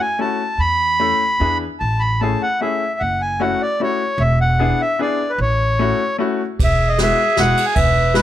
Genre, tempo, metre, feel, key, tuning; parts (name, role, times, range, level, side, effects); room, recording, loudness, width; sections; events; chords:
musette waltz; 151 BPM; 3/4; straight; A major; A4 = 440 Hz
accordion; melody; 0.0-8.2 s; B4 to B5; -18 LUFS; equal
bright upright piano; accompaniment; 0.2-8.2 s; G#3 to A4; -22 LUFS; left 5 dB
upright bass; bass; 0.6-8.2 s; E1 to E2; -20 LUFS; right 1 dB
bright clarinet; second line; 6.6-8.2 s; G#4 to B4; -23 LUFS; right 8 dB
jazz brush drum kit; drums; 6.6-8.2 s; kick drum, ride cymbal, snare drum; -21 LUFS; right 1 dB
little or no reverb; close, detailed microphones; -15 LUFS; side -12 dB against mid
0.0-6.6 A section; 6.6-8.2 B section
0.0 F#m7; 0.6 A/E; 1.4 E7; 1.8 Amaj7; 3.0 F#m7; 4.2 E7; 5.4 A6; 6.6 Eadd9